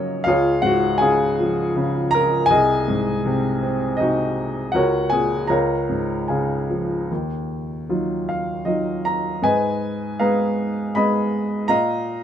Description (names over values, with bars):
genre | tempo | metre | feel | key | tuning
classical, lyrical solo piano | 79 BPM | 3/4 | uneven beats, rubato | Eb minor from 7.1 s | A4 = 440 Hz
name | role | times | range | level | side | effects
warm upright piano | solo | 0.0-12.2 s | B#1 to Cb6 | -18 LUFS | equal | none
room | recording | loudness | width
light reverb | dark, warm production | -18 LUFS | side -9 dB against mid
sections
0.0-7.1 A section; 7.1-12.2 B section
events
none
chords
0.3 C#; 2.5 G#7/B#; 4.7 F#/C#; 5.5 C#; 7.1 Ebmadd9; 9.4 Abmadd9; 11.7 Bbsus4